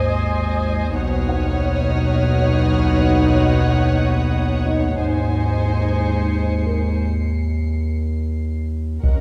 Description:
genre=cinematic, suspense film score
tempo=89 BPM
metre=3/4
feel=straight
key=unclear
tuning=A4 = 441 Hz
part: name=dark studio violin section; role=melody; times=0.0-9.2 s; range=F#5 to Ab5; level=-34 LUFS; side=equal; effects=none
part: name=rich studio violin section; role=second line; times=0.0-9.2 s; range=Bb4 to C#5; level=-32 LUFS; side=equal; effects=none
part: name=dark symphonic viola section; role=accompaniment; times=0.0-9.2 s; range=Db4 to Eb5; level=-28 LUFS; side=equal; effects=none
part: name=warbly tape-like pad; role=sustained chords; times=0.0-9.2 s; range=Ab4 to Eb6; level=-31 LUFS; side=equal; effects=chorus, built-in reverb, phaser
part: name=warm studio double bass section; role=bass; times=0.0-9.2 s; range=Ab1 to Eb2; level=-26 LUFS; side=equal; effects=none
part: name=warm symphonic cello section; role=bass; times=0.0-9.2 s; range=Eb2 to B2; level=-26 LUFS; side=equal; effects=none
part: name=saturated sub bass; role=drone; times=0.0-9.2 s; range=Eb2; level=-24 LUFS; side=equal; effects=none
part: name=dark baby grand piano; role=texture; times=0.0-9.2 s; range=D#4 to C6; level=-36 LUFS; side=equal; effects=none
part: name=warm studio violin section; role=texture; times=0.9-8.7 s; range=D#6 to Db7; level=-38 LUFS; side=equal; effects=none
part: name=solo taiko drums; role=drums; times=9.0-9.2 s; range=none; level=-18 LUFS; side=equal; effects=none
room=moderate scoring stage reverb, RT60 1.9 s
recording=dark, warm production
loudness=-19 LUFS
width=mono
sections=0.0-9.0 A section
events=break 7.0-9.0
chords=0.0 Ab; 0.9 Badd9; 5.0 Ab

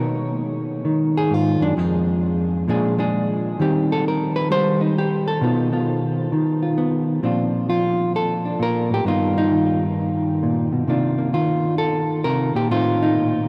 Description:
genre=solo jazz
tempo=132 BPM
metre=4/4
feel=swing 66% on 8ths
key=Bb major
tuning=A4 = 441 Hz
part: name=hollow-body jazz guitar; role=solo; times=0.0-13.5 s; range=F2 to C5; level=-20 LUFS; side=equal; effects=none
room=wet huge ambient reverb, RT60 8.8 s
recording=in a vast, echoing space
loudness=-20 LUFS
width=mono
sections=0.0-7.2 A section; 7.2-13.5 B section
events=hollow-body jazz guitar solo 0.0-7.2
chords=0.0 Bmaj7; 1.8 Fm7; 2.7 Bb7; 3.6 Eb6; 5.4 B7#11; 7.2 Bbmaj9; 9.1 G7alt; 10.9 Cm11; 12.7 Adim

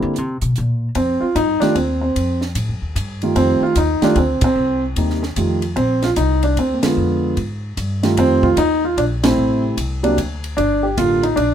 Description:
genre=jazz piano trio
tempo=150 BPM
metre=3/4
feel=swing 65% on 8ths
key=F mixolydian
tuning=A4 = 440 Hz
part: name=dark baby grand piano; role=melody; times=0.0-11.5 s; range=C3 to G4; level=-16 LUFS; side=right 1 dB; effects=none
part: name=upright bass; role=bass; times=0.0-11.5 s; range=G1 to D3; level=-21 LUFS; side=left 1 dB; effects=none
part: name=compact cocktail drum kit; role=drums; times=0.2-11.5 s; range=hi-hat, kick drum, ride cymbal, snare drum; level=-26 LUFS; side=right 1 dB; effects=none
room=light reverb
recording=minimal, uncompressed stereo recording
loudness=-15 LUFS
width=side -9 dB against mid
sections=1.0-11.5 A section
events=band accent 4.4, 6.8, 9.2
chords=0.0 C7sus2; 1.0 F9; 4.6 Cm7; 5.4 F9; 5.8 Bbadd9; 7.0 Bdim7; 8.2 F9; 9.4 Am7; 10.2 N.C.; 10.6 Gm7

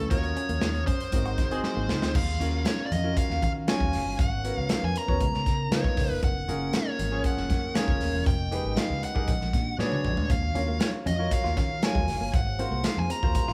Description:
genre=polished 1980s jazz-funk pop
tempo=118 BPM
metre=4/4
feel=straight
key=unclear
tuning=A4 = 440 Hz
part: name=nasal lead guitar with a parked wah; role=melody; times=0.0-13.5 s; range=C5 to Bb5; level=-35 LUFS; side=equal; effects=overdrive
part: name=clear concert grand piano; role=accompaniment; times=0.0-13.5 s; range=F3 to Db5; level=-36 LUFS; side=equal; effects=none
part: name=glass harmonica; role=sustained chords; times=0.0-13.5 s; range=Ab3 to Eb6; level=-40 LUFS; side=equal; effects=none
part: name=direct-recorded clean electric guitar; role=riff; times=0.0-2.1, 10.4-13.5 s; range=Ab3 to Gb4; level=-40 LUFS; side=equal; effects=none
part: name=vintage muted fingered electric bass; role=bass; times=0.0-13.5 s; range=Eb1 to Eb3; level=-33 LUFS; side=equal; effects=none
part: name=modern studio drum kit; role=drums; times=0.1-13.5 s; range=crash cymbal, hi-hat, kick drum, snare drum, toms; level=-30 LUFS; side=equal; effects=none
part: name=congas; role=percussion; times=0.1-13.5 s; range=none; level=-43 LUFS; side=equal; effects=none
room=moderate large studio reverb, RT60 1.0 s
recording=band playing live in one room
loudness=-27 LUFS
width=mono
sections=0.0-2.1 A section; 2.1-13.5 B section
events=drum fill 1.6-2.1, 9.8-10.3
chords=0.1 Ebm7; 1.1 Ab7; 2.1 Ebm9; 4.2 Abm11; 5.2 Db13; 6.2 Gbmaj7; 8.3 Fm7b5; 9.3 Bb7alt; 10.3 Ebm9; 12.3 Ab13

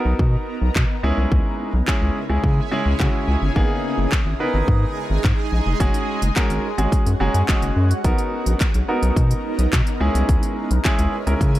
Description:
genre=dance-pop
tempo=107 BPM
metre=4/4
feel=straight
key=B major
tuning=A4 = 441 Hz
part: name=clear baby grand piano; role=accompaniment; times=0.0-11.6 s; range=G#3 to A#5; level=-24 LUFS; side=equal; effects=sidechain pumping
part: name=shimmering ambient pad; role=sustained chords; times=0.0-11.6 s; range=C#3 to A#5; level=-28 LUFS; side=right 1 dB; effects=chorus, built-in reverb, phaser, sidechain pumping
part: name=round analog bass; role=bass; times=0.1-11.6 s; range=E#1 to C#3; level=-19 LUFS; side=equal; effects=sidechain pumping
part: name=house drum kit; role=drums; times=0.2-11.6 s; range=handclaps, hi-hat, kick drum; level=-20 LUFS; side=equal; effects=none
room=little or no reverb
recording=none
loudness=-17 LUFS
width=side -15 dB against mid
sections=0.0-11.6 A section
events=grand piano fill 6.9-8.0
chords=0.0 Bmaj7; 1.0 C#m; 3.6 G#madd9; 5.8 F#sus2; 8.0 Bmaj7; 10.0 C#m

